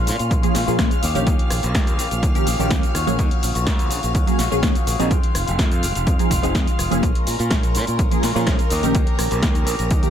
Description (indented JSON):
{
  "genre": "filtered disco house",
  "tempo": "125 BPM",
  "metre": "4/4",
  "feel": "straight",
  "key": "Bb minor",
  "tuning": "A4 = 439 Hz",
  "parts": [
    { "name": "string machine, full ensemble", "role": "sustained chords", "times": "0.0-10.1 s", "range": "Bb4 to F6", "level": "-28 LUFS", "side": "equal", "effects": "ensemble chorus, sidechain pumping" },
    { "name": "electric guitar with an envelope filter", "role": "riff", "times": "0.0-10.1 s", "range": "Eb3 to G4", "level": "-28 LUFS", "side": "left 3 dB", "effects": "sidechain pumping" },
    { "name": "modern bright fingered electric bass", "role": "bass", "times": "0.0-10.0 s", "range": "F1 to Bb2", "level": "-24 LUFS", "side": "equal", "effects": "sidechain pumping" },
    { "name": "punchy analog drum machine", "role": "drums", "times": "0.1-10.1 s", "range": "cabasa, hi-hat, rim click, snare drum", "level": "-26 LUFS", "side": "equal", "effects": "sidechain pumping on hats, sidechain pumping on perc" },
    { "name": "electronic kick drum", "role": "drums", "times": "0.3-10.0 s", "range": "none", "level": "-20 LUFS", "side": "equal", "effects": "overdrive" },
    { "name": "funky polysynth comp", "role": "accompaniment", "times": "0.4-10.1 s", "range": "Eb3 to Ab4", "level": "-23 LUFS", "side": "right 1 dB", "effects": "chorus, phaser, sidechain pumping" }
  ],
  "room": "digital ambience",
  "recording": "none",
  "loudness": "-17 LUFS",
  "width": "side -9 dB against mid",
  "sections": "0.0-10.1 A section",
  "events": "none",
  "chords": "0.0 Bbm7; 1.0 Eb7; 2.9 Ab9sus4; 5.1 Fm7; 7.0 Bbm7; 8.7 Eb7",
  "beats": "0.31 0.79 | 1.27 1.75 2.23 2.71 | 3.19 3.67 4.15 4.63 | 5.11 5.59 6.07 6.55 | 7.03 7.51 7.99 8.47 | 8.95 9.43 9.91"
}